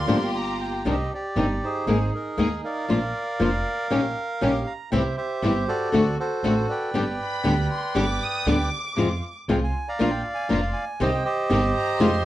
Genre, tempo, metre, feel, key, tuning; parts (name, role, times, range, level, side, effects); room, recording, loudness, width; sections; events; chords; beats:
tango; 118 BPM; 4/4; rubato; C minor; A4 = 440 Hz
bandoneon; melody; 0.0-12.2 s; Eb4 to Bb5; -27 LUFS; right 2 dB; plate reverb
warm chamber violin section; second line; 0.0-0.8, 7.2-12.2 s; Bb5 to Eb6; -30 LUFS; left 1 dB
clear symphonic string section; stabs; 0.0-12.2 s; Ab3 to Ab4; -31 LUFS; right 1 dB; slapback echo
upright bass; bass; 0.0-12.2 s; F1 to F2; -28 LUFS; right 1 dB
flamenco guitar; accompaniment; 0.1-12.1 s; C3 to Bb4; -22 LUFS; left 2 dB
wet studio ambience, RT60 0.5 s; worn, warbling old tape, cassette tape, warbly pitch drift; -22 LUFS; side -14 dB against mid
0.9-12.2 A section
0.0 Gm7; 0.9 Cmadd9; 1.9 Absus2; 2.9 Bb; 3.9 Eb7/Bb; 4.9 C; 5.9 D7; 6.9 G; 9.0 Fm; 10.0 Bb; 11.0 Cm
0.34 | 0.85 1.36 1.87 2.38 | 2.89 3.40 3.91 4.41 | 4.92 5.42 5.93 6.44 | 6.94 7.45 7.96 8.47 | 8.98 9.49 10.00 10.50 | 11.01 11.51 12.01